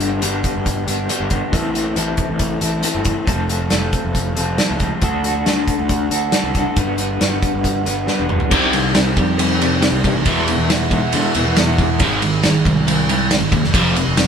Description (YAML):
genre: quiet-loud alternative rock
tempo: 138 BPM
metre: 4/4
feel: straight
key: unclear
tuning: A4 = 438 Hz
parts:
  - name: electric guitar through a small old amp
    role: arpeggios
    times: 0.0-12.0 s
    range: E2 to B4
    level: -20 LUFS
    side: left 1 dB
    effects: tremolo, analog delay
  - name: fuzz picked electric bass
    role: bass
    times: 0.0-14.3 s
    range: E1 to D3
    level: -22 LUFS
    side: equal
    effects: overdrive
  - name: loose indie drum kit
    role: drums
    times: 0.0-14.3 s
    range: crash cymbal, hi-hat, kick drum, ride cymbal, snare drum, toms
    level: -19 LUFS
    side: equal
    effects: none
  - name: crunchy overdriven guitar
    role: riff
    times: 8.5-14.3 s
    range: E2 to C4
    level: -19 LUFS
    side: right 1 dB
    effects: none
room: light reverb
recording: band playing live in one room, lossy compression artefacts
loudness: -15 LUFS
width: side -7 dB against mid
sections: 0.0-8.5 A section; 8.5-14.3 B section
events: drum fill 8.1-8.5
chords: 0.0 G; 1.5 Am; 3.3 F; 5.0 D; 6.8 G; 8.5 Cm; 10.3 E; 12.0 G#; 13.7 F5